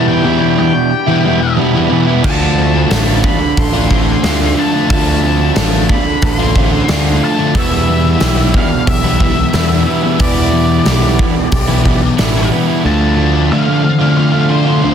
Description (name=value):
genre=rock, shoegaze and dream pop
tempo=91 BPM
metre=4/4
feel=straight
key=D dorian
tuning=A4 = 440 Hz
part: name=octave-fuzz lead guitar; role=melody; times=0.0-14.9 s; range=C5 to C6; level=-20 LUFS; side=left 3 dB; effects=distortion, slapback echo
part: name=direct-recorded clean electric guitar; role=arpeggios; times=0.0-14.9 s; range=F3 to A4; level=-24 LUFS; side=left 9 dB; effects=lush chorus, slapback echo
part: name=overdriven electric guitar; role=riff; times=0.0-14.9 s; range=E2 to F4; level=-16 LUFS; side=right 11 dB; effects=reverse reverb
part: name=thick fuzz guitar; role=riff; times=0.0-14.9 s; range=E2 to D4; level=-16 LUFS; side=left 9 dB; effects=distortion, analog chorus
part: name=fuzz picked electric bass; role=bass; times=2.2-14.9 s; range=A1 to D3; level=-15 LUFS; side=equal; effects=overdrive
part: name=gated 80s drum kit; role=drums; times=2.2-12.3 s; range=crash cymbal, hi-hat, kick drum, snare drum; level=-16 LUFS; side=equal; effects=none
room=small room reverb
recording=dense, heavily limited modern master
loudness=-10 LUFS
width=side -8 dB against mid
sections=0.0-12.8 A section; 12.8-14.9 B section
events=none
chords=0.0 Em7; 2.2 Dm7; 7.6 Em7; 12.8 Dm7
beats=0.24 0.91 1.58 | 2.24 2.91 3.57 4.24 | 4.90 5.57 6.23 6.89 | 7.56 8.22 8.88 9.54 | 10.20 10.87 11.53 12.19 | 12.85 13.51 14.17 14.83